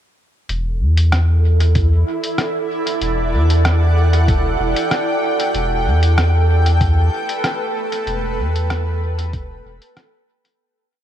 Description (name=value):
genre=ambient dub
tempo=95 BPM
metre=4/4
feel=swing 53% on 16ths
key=E minor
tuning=A4 = 440 Hz
part: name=granular cloud pad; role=sustained chords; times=1.6-10.6 s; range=E4 to G5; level=-22 LUFS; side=equal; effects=built-in reverb
part: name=soft dub sub bass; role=bass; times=0.5-9.8 s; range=E1 to E2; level=-15 LUFS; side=equal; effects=tube saturation
part: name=lo-fi sampler-style drum kit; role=drums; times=0.5-10.6 s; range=hi-hat, rim click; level=-24 LUFS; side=equal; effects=dub echo
part: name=bubbling stepped-filter texture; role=texture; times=1.3-10.6 s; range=A4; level=-26 LUFS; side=right 7 dB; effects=chorus, built-in reverb
part: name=electronic kick drum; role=drums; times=1.8-9.5 s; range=none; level=-19 LUFS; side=equal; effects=none
room=light reverb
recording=none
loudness=-15 LUFS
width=side -10 dB against mid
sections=0.5-10.6 groove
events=fade-out 7.2-10.6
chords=0.5 Em9; 5.5 Gadd9/E